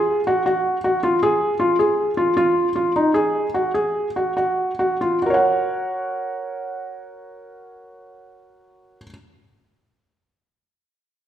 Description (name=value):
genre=contemporary instrumental, contemporary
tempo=136-157 BPM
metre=5/4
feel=straight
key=F# major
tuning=A4 = 440 Hz
part: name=felt-muted upright piano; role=arpeggios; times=0.0-9.1 s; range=D#4 to F#5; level=-19 LUFS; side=equal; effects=none
room=wet recital hall reverb, RT60 1.4 s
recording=none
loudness=-18 LUFS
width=side -10 dB against mid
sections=0.0-5.2 A section; 5.2-9.6 B section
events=slowing down 2.0-5.2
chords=0.0 Fm; 1.2 D#sus4 (rootless); 3.1 N.C.; 5.2 F#